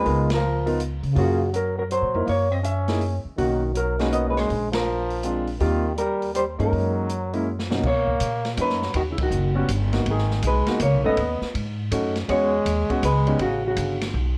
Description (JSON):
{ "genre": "jazz, small-group swing and bop", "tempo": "162 BPM", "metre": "3/4", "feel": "swing 65% on 8ths", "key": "B major from 7.8 s", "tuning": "A4 = 442 Hz", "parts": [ { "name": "hollow-body jazz guitar", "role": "melody", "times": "0.0-14.0 s", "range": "E4 to Fb5", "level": "-28 LUFS", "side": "equal", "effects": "plate reverb" }, { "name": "bright trombone", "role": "second line", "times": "0.0-14.0 s", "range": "Db3 to Db4", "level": "-31 LUFS", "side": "equal", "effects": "none" }, { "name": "warm concert grand piano", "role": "accompaniment", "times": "0.0-13.4 s", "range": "Cb3 to Bb4", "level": "-29 LUFS", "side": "equal", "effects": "none" }, { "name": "upright bass", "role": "bass", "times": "0.1-14.4 s", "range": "F#1 to Db3", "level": "-28 LUFS", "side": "equal", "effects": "none" }, { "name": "open jazz drum kit", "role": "drums", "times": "0.1-14.3 s", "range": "crash cymbal, hi-hat, kick drum, ride cymbal, snare drum", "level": "-34 LUFS", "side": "equal", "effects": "none" } ], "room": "light reverb", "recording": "worn, warbling old tape, cassette tape, warbly pitch drift", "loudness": "-23 LUFS", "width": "mono", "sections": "0.0-7.8 A section; 7.8-14.4 B section", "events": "band accent 0.2, 4.7, 9.1; drum fill 7.5-7.8", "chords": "0.1 Db13; 1.2 Gbmaj7; 2.3 Gb7; 3.4 Bmaj7; 4.5 Bb7; 5.6 Eb69; 6.7 Gbadd9; 7.8 Bmaj9; 8.9 D#aug; 10.1 G#m; 11.2 B7; 12.3 E69; 13.4 A13" }